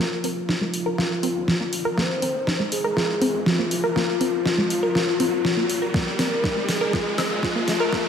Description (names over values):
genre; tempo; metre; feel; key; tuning
progressive house; 121 BPM; 4/4; straight; unclear; A4 = 440 Hz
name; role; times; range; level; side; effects
soft octave-layered synth lead; melody; 0.0-8.1 s; F4 to C5; -25 LUFS; left 2 dB; chorus, sidechain pumping, analog delay
riser; sound effects; 0.3-8.1 s; none; -31 LUFS; right 1 dB; none
wide unison pluck; arpeggios; 0.2-8.0 s; F3 to Bb4; -26 LUFS; equal; sidechain pumping, analog delay
round analog bass; bass; 0.2-7.9 s; Eb1 to Bb2; -42 LUFS; equal; none
pop drum kit; drums; 0.2-8.0 s; hi-hat, snare drum, woodblock; -26 LUFS; equal; overdrive
electronic kick drum; drums; 5.9-8.0 s; none; -27 LUFS; equal; overdrive
room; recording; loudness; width
wet lush hall reverb, RT60 2.2 s; dreamy mix soaked in reverb, high-pass filter; -20 LUFS; side -7 dB against mid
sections
0.0-8.1 A section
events
build-up 0.0-8.1; drum fill 0.0-8.1; filter sweep on synth pluck 0.0-8.1; filter sweep on soft synth lead 0.0-8.1; riser 0.3-8.1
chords
0.0 Ebsus2; 2.0 Fm; 4.0 N.C.; 5.9 Bb5